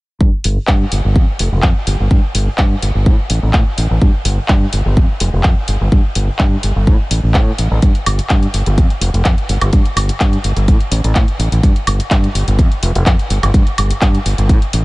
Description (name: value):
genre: filtered disco house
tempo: 126 BPM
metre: 4/4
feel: straight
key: unclear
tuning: A4 = 440 Hz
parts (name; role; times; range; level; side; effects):
- modern bright fingered electric bass; bass; 0.2-14.8 s; F1 to A2; -15 LUFS; equal; tube saturation, sidechain pumping, low-pass filter
- electronic kick drum; drums; 0.2-14.6 s; none; -12 LUFS; equal; none
- house drum kit; drums; 0.4-14.8 s; handclaps, hi-hat, woodblock; -20 LUFS; equal; sidechain pumping on hats, sidechain pumping on perc
room: little or no reverb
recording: nothing above 10.4 kHz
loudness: -11 LUFS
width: side -21 dB against mid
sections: 0.2-14.8 A section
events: filter sweep on fingered electric bass 0.2-14.8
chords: none